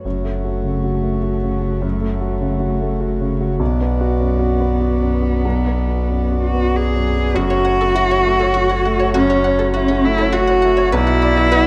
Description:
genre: neoclassical piano and strings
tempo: 101 BPM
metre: 3/4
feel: rubato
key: F# minor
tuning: A4 = 439 Hz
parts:
  - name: rich cello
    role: second line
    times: 0.0-11.7 s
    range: A3 to G#4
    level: -21 LUFS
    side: equal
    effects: none
  - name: warm concert grand piano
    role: accompaniment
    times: 0.0-11.7 s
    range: B1 to D5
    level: -22 LUFS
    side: equal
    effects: none
  - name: pedal harmonium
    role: sustained chords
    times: 0.0-11.7 s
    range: A3 to D5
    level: -29 LUFS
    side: equal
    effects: none
  - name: warm sub bass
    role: bass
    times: 0.0-11.7 s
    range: F#1 to B1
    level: -23 LUFS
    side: equal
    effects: none
  - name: string-like resonator pluck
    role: arpeggios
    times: 7.4-11.6 s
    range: F#4 to B5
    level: -28 LUFS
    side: equal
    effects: chorus, slapback echo
room: light reverb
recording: dark, warm production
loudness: -17 LUFS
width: mono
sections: 0.0-7.4 A section; 7.4-11.7 B section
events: none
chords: 0.0 F#m; 3.6 Bm; 7.4 F#m; 10.9 Bm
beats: | 0.05 0.65 1.24 | 1.83 2.43 3.02 | 3.60 4.20 4.81 | 5.44 6.09 6.73 | 7.35 7.95 8.55 | 9.15 9.75 10.34 | 10.93 11.52

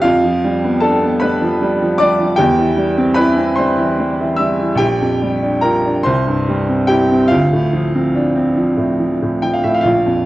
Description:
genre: classical, romantic nocturne for solo piano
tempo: 46-52 BPM (dotted quarters)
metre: 12/8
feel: rubato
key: C major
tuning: A4 = 440 Hz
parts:
  - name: clear upright piano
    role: solo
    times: 0.0-10.3 s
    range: Bb1 to E6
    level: -13 LUFS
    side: equal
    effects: none
room: moderate recital hall reverb, RT60 1.4 s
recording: worn, warbling old tape, cassette tape, warbly pitch drift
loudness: -13 LUFS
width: side -16 dB against mid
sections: 0.0-10.3 A section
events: none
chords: 0.0 G7/F; 2.4 C/E; 4.8 Gm7/Bb; 6.0 C; 7.3 Dm7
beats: | 0.03 1.22 2.38 3.56 | 4.80 6.05 7.32 8.57 | 9.86

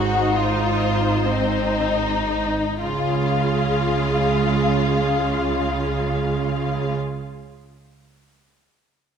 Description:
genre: classical, slow romantic movement for string orchestra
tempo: free time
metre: none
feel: none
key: Db major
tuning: A4 = 440 Hz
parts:
  - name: rich symphonic violin section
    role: melody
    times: 0.0-6.9 s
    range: C5 to F5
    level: -29 LUFS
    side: left 6 dB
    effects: none
  - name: warm symphonic violin section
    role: second line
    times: 0.0-6.9 s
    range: Eb4 to Gb4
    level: -24 LUFS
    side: left 4 dB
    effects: none
  - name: rich symphonic viola section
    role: accompaniment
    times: 0.0-6.9 s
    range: Ab3 to Ab4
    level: -26 LUFS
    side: right 1 dB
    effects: none
  - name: rich symphonic cello section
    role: bass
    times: 0.0-6.9 s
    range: Ab2 to Db3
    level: -26 LUFS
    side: right 5 dB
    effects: none
  - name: rich symphonic double bass section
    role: bass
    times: 0.0-6.9 s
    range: Ab1 to Db2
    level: -26 LUFS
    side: right 4 dB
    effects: none
room: wet scoring stage reverb, RT60 1.6 s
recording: none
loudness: -19 LUFS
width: side -7 dB against mid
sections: 0.0-2.8 A section; 2.8-8.7 B section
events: slowing down 0.0-2.8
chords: 0.0 Ab; 2.8 Db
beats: free time

